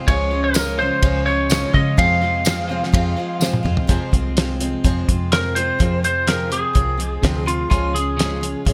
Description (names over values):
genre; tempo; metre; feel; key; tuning
folk rock and heartland rock; 126 BPM; 4/4; straight; F minor; A4 = 440 Hz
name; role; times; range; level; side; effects
picked steel-string acoustic guitar; accompaniment; 0.0-8.7 s; F2 to F4; -31 LUFS; equal; lush chorus
twelve-string electric guitar; riff; 0.0-8.7 s; F2 to F4; -28 LUFS; equal; none
lightly driven lead guitar; melody; 0.1-8.7 s; F4 to F5; -24 LUFS; equal; digital delay
dark concert grand piano; accompaniment; 0.1-8.7 s; C4 to Db5; -34 LUFS; equal; lush chorus
deep dub fingered electric bass; bass; 0.1-8.7 s; Ab1 to Db3; -25 LUFS; equal; none
damped 70s drum kit; drums; 0.1-8.7 s; hi-hat, kick drum, ride cymbal, snare drum, toms; -22 LUFS; equal; none
tambourine; percussion; 0.5-3.5 s; none; -30 LUFS; equal; none
room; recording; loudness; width
light reverb, small room ambience; bright 1980s-style digital production; -19 LUFS; mono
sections
0.0-3.9 A section; 3.9-5.8 B section; 5.8-8.7 C section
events
drum fill 3.4-3.9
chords
0.1 Db; 2.0 Fm; 7.7 Db